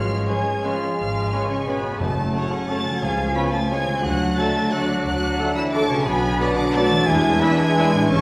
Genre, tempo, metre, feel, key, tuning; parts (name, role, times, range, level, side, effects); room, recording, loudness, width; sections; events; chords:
classical, orchestral ballroom waltz; 177 BPM; 3/4; uneven beats, rubato; A4 = 435 Hz
warm symphonic violin section; melody; 0.0-8.2 s; A5 to B6; -32 LUFS; equal
concert flute; second line; 0.0-8.2 s; A4 to B5; -33 LUFS; equal
dark clarinet; second line; 0.0-8.2 s; C#4 to D4; -31 LUFS; equal
dark cor anglais; second line; 0.0-8.2 s; A3 to B4; -31 LUFS; equal
warm symphonic violin section; second line; 0.0-8.2 s; C#5 to A5; -34 LUFS; equal
warm bassoon; accompaniment; 0.0-8.2 s; E3 to G#3; -31 LUFS; equal
concert harp; arpeggios; 0.0-8.2 s; F#2 to C#5; -30 LUFS; equal
rich symphonic cello section; bass; 0.0-8.2 s; A2 to B3; -30 LUFS; equal
rich symphonic double bass section; bass; 0.0-8.2 s; F#1 to E2; -30 LUFS; equal
rich studio viola section; accompaniment; 0.3-7.9 s; A3 to B4; -34 LUFS; equal
clear trombone section; sustained chords; 0.3-7.9 s; C#3 to B3; -37 LUFS; equal
dark French horn section; sustained chords; 0.3-7.9 s; C#4 to B4; -34 LUFS; equal
bright trumpet section; stabs; 0.3-7.9 s; A4 to E5; -36 LUFS; equal
timpani; percussion; 2.0-3.5 s; F#2 to C#3; -33 LUFS; equal
wet recital hall reverb, RT60 1.6 s; recorded in a church or concert hall; -21 LUFS; mono
0.0-8.2 A section
0.0 C#7/G#; 2.0 F#m; 3.0 C#; 4.0 D; 6.1 Bm; 7.1 E7